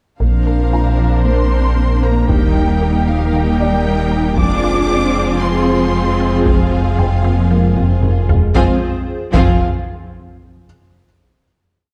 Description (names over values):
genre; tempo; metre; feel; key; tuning
cinematic, hybrid orchestral and electronic film score; 115 BPM; 4/4; straight; F dorian; A4 = 442 Hz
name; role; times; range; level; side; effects
warm symphonic violin section; melody; 0.2-9.6 s; F5 to D6; -27 LUFS; equal; none
rich symphonic violin section; second line; 0.2-9.6 s; F4 to C5; -29 LUFS; equal; none
warm symphonic viola section; accompaniment; 0.2-9.6 s; F3 to Eb4; -26 LUFS; equal; none
hollow soft pad; sustained chords; 0.2-8.8 s; Bb3 to G5; -26 LUFS; equal; ensemble chorus
mellow French horn section; sustained chords; 0.2-8.8 s; Ab3 to Eb4; -26 LUFS; equal; none
resonant blip pluck; arpeggios; 0.2-8.4 s; Eb3 to Bb4; -30 LUFS; equal; none
rich symphonic cello section; bass; 0.2-9.6 s; F3 to D4; -25 LUFS; equal; none
rich symphonic double bass section; bass; 0.2-9.6 s; Bb1 to F2; -22 LUFS; equal; none
sub bass with octave; bass; 0.2-9.6 s; Eb1 to Bb1; -21 LUFS; equal; none
taiko ensemble; drums; 0.2-10.3 s; none; -20 LUFS; equal; none
felt-muted upright piano; texture; 0.7-8.6 s; Bb3 to Bb5; -30 LUFS; equal; none
room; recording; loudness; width
moderate scoring stage reverb, RT60 1.7 s; dark, warm production; -15 LUFS; mono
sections
0.2-8.6 theme; 8.6-10.6 final chord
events
drum fill 7.8-8.6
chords
0.2 Bbadd9; 2.3 Eb; 4.4 Fm